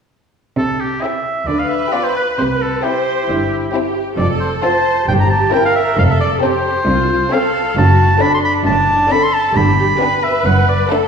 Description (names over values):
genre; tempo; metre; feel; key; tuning
quick classical-period movement for symphony orchestra; 134 BPM; 4/4; straight; C major; A4 = 441 Hz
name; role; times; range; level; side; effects
clear oboe; second line; 0.6-10.9 s; G4 to C6; -17 LUFS; right 1 dB; none
clear studio cello section; bass; 0.6-10.8 s; C2 to D3; -21 LUFS; right 1 dB; none
rich studio double bass section; bass; 0.6-10.8 s; F1 to D2; -20 LUFS; right 1 dB; none
rich studio violin section; melody; 1.0-11.1 s; F4 to Bb4; -24 LUFS; left 5 dB; none
rich studio violin section; second line; 1.0-11.1 s; A3 to F4; -23 LUFS; left 2 dB; none
rich studio viola section; accompaniment; 1.5-11.1 s; D4 to C5; -19 LUFS; equal; none
timpani; percussion; 5.1-5.7, 9.6-10.2 s; G2; -21 LUFS; left 1 dB; none
room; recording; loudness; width
wet recital hall reverb, RT60 1.4 s; recorded in a church or concert hall; -13 LUFS; side -6 dB against mid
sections
0.6-11.1 A section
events
none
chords
0.6 C; 1.5 G7/D; 2.4 C; 4.2 F; 5.1 C7/G; 6.0 F; 7.8 D7/F#; 9.6 G; 10.5 D/F#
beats
| 0.58 1.03 1.48 1.94 | 2.39 2.84 3.29 3.74 | 4.19 4.64 5.09 5.53 | 5.98 6.43 6.88 7.32 | 7.77 8.21 8.66 9.11 | 9.56 10.01 10.46 10.91